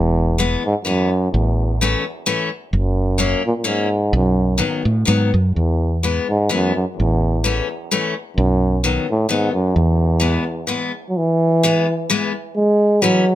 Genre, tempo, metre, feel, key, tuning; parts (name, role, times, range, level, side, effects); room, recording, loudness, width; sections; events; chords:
alpine folk, alpine dance band; 128 BPM; 3/4; rubato; E major; A4 = 440 Hz
warm euphonium; melody; 0.0-13.3 s; E2 to G#3; -19 LUFS; right 1 dB; ping-pong delay
woody fretless electric bass; bass; 0.0-10.4 s; E1 to A2; -18 LUFS; right 1 dB
picked steel-string acoustic guitar; accompaniment; 0.4-13.2 s; D#3 to C#4; -19 LUFS; left 4 dB
light reverb; -16 LUFS; side -13 dB against mid
0.0-11.2 A section; 11.2-13.3 A section
0.0 Eadd9; 1.3 A; 2.7 F#; 4.1 B; 5.6 E; 7.0 A; 8.4 B; 9.7 E; 12.6 A